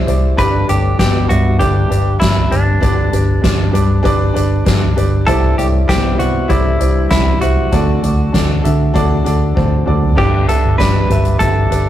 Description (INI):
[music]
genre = piano-driven pop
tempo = 98 BPM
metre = 4/4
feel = straight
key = unclear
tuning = A4 = 440 Hz
[part]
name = clear grand piano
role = accompaniment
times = 0.0-11.9 s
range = G2 to E5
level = -19 LUFS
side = equal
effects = none
[part]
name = vintage muted fingered electric bass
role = bass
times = 0.0-11.9 s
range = G1 to D3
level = -15 LUFS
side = equal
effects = none
[part]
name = soft-mallet drum kit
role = drums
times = 0.1-11.9 s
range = crash cymbal, hi-hat, kick drum, snare drum, toms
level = -17 LUFS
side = right 1 dB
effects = none
[part]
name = direct-recorded clean electric guitar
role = melody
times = 0.4-11.9 s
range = D4 to B4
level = -19 LUFS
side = equal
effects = none
[part]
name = dark French horn section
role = second line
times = 0.4-7.4 s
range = G2 to B3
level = -25 LUFS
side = left 2 dB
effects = none
[sound]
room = light reverb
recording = rough rehearsal-room recording, tube saturation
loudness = -11 LUFS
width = side -12 dB against mid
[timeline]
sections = 0.0-10.2 A section; 10.2-11.9 B section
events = drum fill 9.6-10.2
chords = 0.4 G; 5.3 Cadd9; 7.7 D; 10.2 G